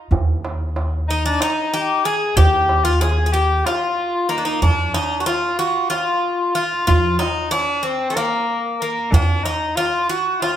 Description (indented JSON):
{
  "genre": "Turkish makam ensemble",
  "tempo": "186 BPM (eighths)",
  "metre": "7/8",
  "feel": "straight",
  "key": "Eb makam rast, F makam hicaz from 4.6 s",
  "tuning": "A4 = 440 Hz",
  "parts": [
    { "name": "upright bass", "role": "bass", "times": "0.1-9.4 s", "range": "Eb2 to F3", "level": "-19 LUFS", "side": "equal", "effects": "none" },
    { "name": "darbuka", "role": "percussion", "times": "0.1-10.6 s", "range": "none", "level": "-22 LUFS", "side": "right 2 dB", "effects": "none" },
    { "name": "Greek bouzouki", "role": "melody", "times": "1.1-10.6 s", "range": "A3 to Ab4", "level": "-19 LUFS", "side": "left 1 dB", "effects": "slapback echo" },
    { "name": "breathy soprano saxophone", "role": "second line", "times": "1.1-10.6 s", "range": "C4 to Bb4", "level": "-24 LUFS", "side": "left 1 dB", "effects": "none" }
  ],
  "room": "light reverb",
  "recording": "none",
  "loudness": "-16 LUFS",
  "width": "side -10 dB against mid",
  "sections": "0.0-4.6 A section; 4.6-10.6 B section",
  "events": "none",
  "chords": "none"
}